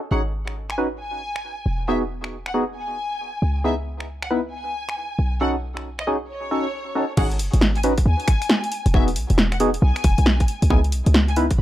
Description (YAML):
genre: UK garage, two-step garage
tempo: 136 BPM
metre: 4/4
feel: swing 64% on 16ths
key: C# minor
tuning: A4 = 440 Hz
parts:
  - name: rich studio violin section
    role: melody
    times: 0.1-11.6 s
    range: C#5 to B5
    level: -30 LUFS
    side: left 2 dB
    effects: tape echo
  - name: percussive organ stab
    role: stabs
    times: 0.1-11.5 s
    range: B3 to B4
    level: -24 LUFS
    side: equal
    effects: wide subtle chorus, tape echo
  - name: short 808-style bass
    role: bass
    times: 0.1-11.6 s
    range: E1 to D#2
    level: -21 LUFS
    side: equal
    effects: none
  - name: punchy analog drum machine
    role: drums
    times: 0.5-11.6 s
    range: crash cymbal, finger snaps, hi-hat, snare drum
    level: -22 LUFS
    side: equal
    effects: overdrive, small room ambience
  - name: electronic kick drum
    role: drums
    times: 7.2-11.6 s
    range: none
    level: -19 LUFS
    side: equal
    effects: small room ambience
room: little or no reverb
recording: dry, gritty hardware recording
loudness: -19 LUFS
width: side -14 dB against mid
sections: 0.0-7.2 A section; 7.2-11.6 B section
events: drop 7.2-11.6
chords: 0.1 G#7sus4; 1.7 Emaj9; 3.4 C#m9; 5.2 B7; 7.2 G#7sus4; 8.7 Emaj9; 10.5 C#m9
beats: | 0.12 0.56 1.00 1.44 | 1.88 2.32 2.76 3.20 | 3.65 4.09 4.53 4.97 | 5.41 5.85 6.29 6.73 | 7.17 7.62 8.06 8.50 | 8.94 9.38 9.82 10.26 | 10.70 11.14 11.59